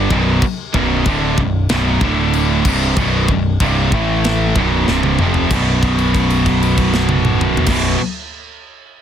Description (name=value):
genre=heavy metal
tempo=94 BPM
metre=4/4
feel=straight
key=B minor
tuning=A4 = 441 Hz
part: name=overdriven electric guitar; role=riff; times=0.0-8.0 s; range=B1 to A3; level=-22 LUFS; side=equal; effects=none
part: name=scooped high-gain guitar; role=riff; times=0.0-8.0 s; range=B1 to A3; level=-19 LUFS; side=left 8 dB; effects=distortion
part: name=tight distorted guitar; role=riff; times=0.0-8.0 s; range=B1 to A3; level=-19 LUFS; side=right 10 dB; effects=distortion
part: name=growling picked electric bass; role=bass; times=0.0-7.9 s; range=B0 to A1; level=-19 LUFS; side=equal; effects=overdrive
part: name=tight metal drum kit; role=drums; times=0.1-7.8 s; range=crash cymbal, kick drum, snare drum, toms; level=-20 LUFS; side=equal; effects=soft clipping on kick
room=little or no reverb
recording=dense, heavily limited modern master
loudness=-13 LUFS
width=side -9 dB against mid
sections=0.0-5.5 A section; 5.5-8.1 B section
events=drum fill 4.9-5.5; held note 5.5-7.7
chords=0.0 Bm; 2.0 D5; 2.7 B5; 3.9 A5; 4.6 B5